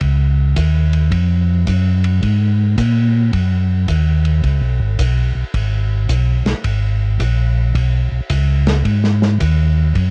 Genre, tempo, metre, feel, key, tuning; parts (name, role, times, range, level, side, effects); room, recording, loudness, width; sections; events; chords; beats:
soul jazz organ trio; 109 BPM; 4/4; swing 67% on 8ths; A4 = 440 Hz
mellow tonewheel organ; bass; 0.0-10.1 s; Ab1 to Bb2; -16 LUFS; equal; chorus vibrato, slow rotary speaker
warm soul drum kit; drums; 0.0-10.1 s; hi-hat, kick drum, ride cymbal, snare drum; -26 LUFS; equal; cassette tape
little or no reverb; home recording on cassette; -16 LUFS; mono
0.0-10.1 A section
| 0.02 0.57 1.12 1.68 | 2.23 2.78 3.33 3.88 | 4.44 4.99 5.54 6.09 | 6.64 7.20 7.75 8.30 | 8.85 9.40 9.96